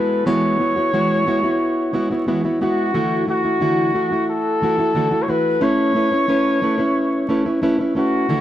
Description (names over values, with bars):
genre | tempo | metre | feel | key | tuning
acoustic pop | 90 BPM | 4/4 | straight | A major | A4 = 441 Hz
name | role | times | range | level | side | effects
warm flugelhorn | melody | 0.0-8.4 s | F#4 to C#5 | -20 LUFS | left 1 dB | tape echo
fingerpicked plugged-in steel-string acoustic guitar | accompaniment | 0.0-8.4 s | D3 to B4 | -18 LUFS | equal | none
room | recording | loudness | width
moderate studio reverb, RT60 0.6 s | vinyl crackle | -16 LUFS | side -12 dB against mid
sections
0.0-8.4 A section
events
none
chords
0.0 Eadd9; 2.9 Dadd9; 5.6 Aadd9